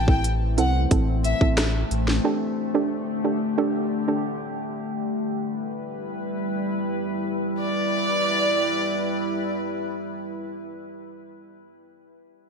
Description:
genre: dancehall.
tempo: 90 BPM.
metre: 4/4.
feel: straight.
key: G major.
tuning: A4 = 440 Hz.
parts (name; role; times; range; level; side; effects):
warm chamber violin section; melody; 0.0-1.4, 7.6-9.5 s; D5 to G5; -25 LUFS; left 1 dB; digital delay.
soft round pluck; accompaniment; 0.0-4.2 s; C4 to A4; -26 LUFS; right 6 dB; chorus.
deep dark ambient pad; sustained chords; 0.0-11.0 s; D3 to B4; -27 LUFS; left 1 dB; chorus, built-in reverb.
sub bass with octave; bass; 0.0-2.2 s; A1 to C2; -23 LUFS; equal; none.
island pop drum kit; drums; 0.1-2.2 s; hi-hat, kick drum, rim click, snare drum; -23 LUFS; equal; vintage 12-bit sampler grit, gated reverb.
room: moderate plate reverb, RT60 2.3 s.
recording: bright 1980s-style digital production.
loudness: -22 LUFS.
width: side -5 dB against mid.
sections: 0.0-7.6 A section; 7.6-10.2 B section.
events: none.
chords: 0.0 Am; 2.2 Dsus4; 4.9 G6.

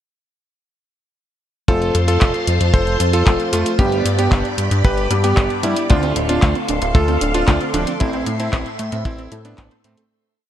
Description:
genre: italo disco.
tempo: 114 BPM.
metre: 4/4.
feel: straight.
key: A minor.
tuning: A4 = 440 Hz.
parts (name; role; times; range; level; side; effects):
bright electric grand piano; melody; 1.7-10.0 s; F3 to C5; -21 LUFS; right 1 dB; ping-pong delay.
phased string machine; sustained chords; 1.7-10.1 s; F4 to E6; -24 LUFS; equal; ensemble chorus, phaser.
dark grand piano; stabs; 1.7-10.1 s; G2 to A4; -26 LUFS; left 3 dB; none.
chorused synth bass; bass; 1.7-10.0 s; D1 to A2; -20 LUFS; equal; none.
house drum kit; drums; 1.7-10.1 s; handclaps, hi-hat; -26 LUFS; left 1 dB; none.
kick drum; drums; 1.7-9.7 s; none; -16 LUFS; equal; none.
wide unison pluck; arpeggios; 5.9-10.1 s; A3 to E5; -27 LUFS; right 3 dB; tape echo.
room: light reverb.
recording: dark, warm production.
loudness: -15 LUFS.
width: side -11 dB against mid.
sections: 1.7-10.1 chorus.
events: fade-out 7.3-10.1.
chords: 1.7 F; 3.8 G; 5.9 Dm7; 8.0 Am.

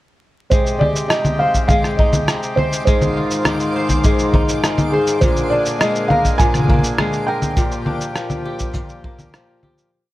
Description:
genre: folktronica.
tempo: 102 BPM.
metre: 4/4.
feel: straight.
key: Ab lydian.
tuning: A4 = 440 Hz.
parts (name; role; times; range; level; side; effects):
felt-muted upright piano; melody; 0.5-8.1 s; Ab4 to Ab5; -20 LUFS; right 1 dB; vintage 12-bit sampler grit, tape echo.
hand-pumped harmonium; sustained chords; 0.5-9.9 s; Ab2 to Ab4; -24 LUFS; left 1 dB; none.
kora; arpeggios; 0.5-10.1 s; Bb2 to C5; -23 LUFS; left 1 dB; low-pass filter, tape echo.
electronic cabasa, congas and rim click; drums; 0.5-9.9 s; none; -20 LUFS; equal; none.
kick drum; drums; 0.5-9.2 s; none; -17 LUFS; equal; none.
backwards swelling texture; texture; 1.8-9.9 s; C5 to D6; -31 LUFS; right 2 dB; built-in reverb.
room: light reverb, small room ambience.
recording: vinyl crackle.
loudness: -15 LUFS.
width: side -16 dB against mid.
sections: 0.5-9.9 groove.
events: filter sweep on kora 0.5-9.9; fade-out 6.8-9.9.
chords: 0.5 Abmaj7; 2.9 Fm7/Ab; 5.2 Bb7; 7.6 Gm7/Bb.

